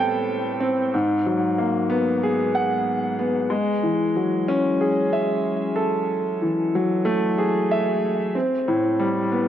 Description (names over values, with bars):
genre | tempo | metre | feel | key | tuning
hip hop | 93 BPM | 4/4 | swing 59% on 16ths | unclear | A4 = 439 Hz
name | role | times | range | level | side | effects
warm grand piano | solo | 0.0-9.5 s | G#2 to G5 | -20 LUFS | equal | cassette tape, high-pass filter, low-pass filter, ping-pong delay
room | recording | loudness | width
moderate plate reverb, RT60 2.2 s | none | -20 LUFS | side -10 dB against mid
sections
0.0-9.5 A section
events
none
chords
0.0 Am9; 0.9 G#m9; 3.5 F#m9; 8.4 Am9